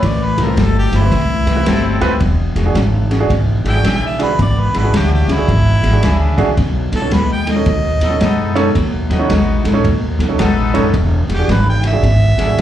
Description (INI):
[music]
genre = electric blues shuffle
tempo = 110 BPM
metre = 4/4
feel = swing 64% on 8ths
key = unclear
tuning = A4 = 442 Hz
[part]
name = clear harmonica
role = melody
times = 0.0-12.6 s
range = E4 to G5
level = -20 LUFS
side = right 1 dB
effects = overdrive, slapback echo
[part]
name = electric guitar through a small old amp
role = riff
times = 0.0-12.6 s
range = E2 to G#3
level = -20 LUFS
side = left 5 dB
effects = slapback echo
[part]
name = upright bass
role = bass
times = 0.0-12.6 s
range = E1 to F#2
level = -15 LUFS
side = equal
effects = none
[part]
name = vintage drum kit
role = drums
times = 0.0-12.6 s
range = kick drum, ride cymbal, snare drum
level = -20 LUFS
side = equal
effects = none
[part]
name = warm upright piano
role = accompaniment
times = 0.4-12.6 s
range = C4 to C5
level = -21 LUFS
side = right 6 dB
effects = slapback echo
[part]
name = mellow horn section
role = stabs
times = 0.4-12.6 s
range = B3 to A4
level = -24 LUFS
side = left 2 dB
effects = slapback echo
[sound]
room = light reverb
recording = live gig heard through the venue's PA, club reverb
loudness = -12 LUFS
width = side -11 dB against mid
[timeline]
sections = 0.0-12.6 A section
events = harmonica solo 0.0-12.6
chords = 0.0 Am7; 2.2 E7; 6.6 B7; 10.9 E7